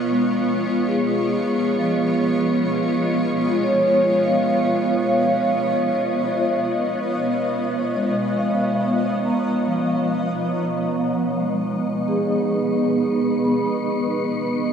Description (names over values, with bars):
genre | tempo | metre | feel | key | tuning
ambient | free time | none | none | B lydian | A4 = 435 Hz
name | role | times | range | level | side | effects
granular cloud pad | sustained chords | 0.0-14.7 s | B3 to D#5 | -21 LUFS | equal | built-in reverb
vibraphone with medium mallets | arpeggios | 0.0-14.7 s | E#3 to B5 | -22 LUFS | equal | diffuse ambient delay
wind-like tuned noise texture | texture | 0.0-14.7 s | C#6 | -38 LUFS | right 1 dB | built-in reverb
room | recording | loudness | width
wet cathedral reverb, RT60 4.7 s | in a vast, echoing space, cassette tape | -18 LUFS | side -7 dB against mid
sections
0.0-10.2 A section; 10.2-14.7 B section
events
fade-out on synth texture 0.0-10.2; filter sweep on ambient pad 10.2-14.7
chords
0.0 C#add9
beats
free time